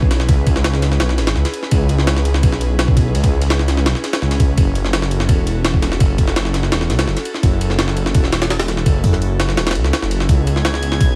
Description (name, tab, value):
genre	drum and bass, jungle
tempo	168 BPM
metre	4/4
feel	straight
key	C# minor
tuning	A4 = 440 Hz
part	airy breathy pad	sustained chords	0.0-11.2 s	B3 to B4	-28 LUFS	equal	chorus, vintage 12-bit sampler grit
part	detuned saw bass	bass	0.0-11.2 s	E1 to C#2	-20 LUFS	equal	none
part	jungle sampler-style drum kit	drums	0.0-11.1 s	kick drum, ride cymbal, snare drum	-19 LUFS	equal	none
part	shaker and snare drum	drums	10.3-11.1 s	none	barely audible	none	none
part	drifting glass-harmonics texture	texture	10.4-11.2 s	G#6	-30 LUFS	equal	chorus, built-in reverb
room	digital ambience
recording	vinyl crackle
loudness	-16 LUFS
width	mono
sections	0.0-11.2 A section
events	kick drops out 9.6-10.3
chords	0.0 C#m7; 4.6 F#m7; 10.3 C#m7